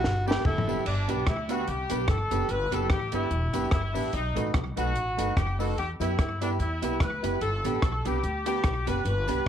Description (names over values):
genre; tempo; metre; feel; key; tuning
ska; 146 BPM; 4/4; swing 56% on 8ths; G major; A4 = 435 Hz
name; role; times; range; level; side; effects
clear tenor saxophone; melody; 0.0-0.9 s; F#4 to A4; -32 LUFS; equal; none
upright bass; bass; 0.0-9.5 s; E1 to G2; -30 LUFS; equal; none
compact cocktail drum kit; drums; 0.0-9.4 s; crash cymbal, hi-hat, kick drum, rim click, snare drum, toms; -29 LUFS; equal; slapback echo
hollow-body jazz guitar; accompaniment; 0.3-9.4 s; A3 to G4; -33 LUFS; right 12 dB; slapback echo
warm upright piano; stabs; 0.3-9.5 s; D4 to B4; -35 LUFS; left 11 dB; slapback echo
tambourine; percussion; 0.3-9.4 s; none; -49 LUFS; right 16 dB; slapback echo
warm horn section; melody; 0.5-9.5 s; D4 to B4; -31 LUFS; left 2 dB; none
room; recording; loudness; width
moderate spring reverb, RT60 1.7 s, studio ambience; 1960s-style stereo with parts hard left and right; -25 LUFS; side -9 dB against mid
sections
0.9-9.5 A section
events
drum fill 0.0-0.9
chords
0.0 G; 4.1 B7; 5.8 Em; 7.4 G